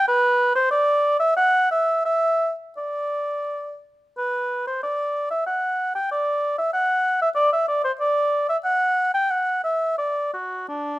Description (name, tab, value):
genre	classical, baroque-style fantasia for unaccompanied oboe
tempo	83-97 BPM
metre	3/4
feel	rubato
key	unclear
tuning	A4 = 438 Hz
part	warm oboe	solo	0.0-11.0 s	D4 to G5	-20 LUFS	equal	none
room	moderate stone room reverb, RT60 1.0 s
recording	none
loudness	-20 LUFS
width	side -17 dB against mid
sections	0.0-4.2 A section; 4.2-11.0 A section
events	none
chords	none